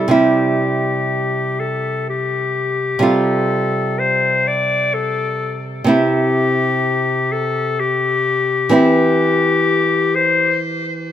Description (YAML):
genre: romantic duo for clarinet and classical guitar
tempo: 42 BPM (dotted quarters)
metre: 6/8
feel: rubato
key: C major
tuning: A4 = 438 Hz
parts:
  - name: clear clarinet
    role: melody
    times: 0.0-10.6 s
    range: G4 to D5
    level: -17 LUFS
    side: left 5 dB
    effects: plate reverb, tape echo
  - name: nylon-string guitar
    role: accompaniment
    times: 0.0-11.1 s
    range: C3 to F4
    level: -18 LUFS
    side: right 2 dB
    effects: none
room: light reverb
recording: none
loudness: -15 LUFS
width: side -10 dB against mid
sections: 0.1-11.1 A section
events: none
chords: 0.1 C; 3.0 Gsus2/C; 5.9 C; 8.7 C/E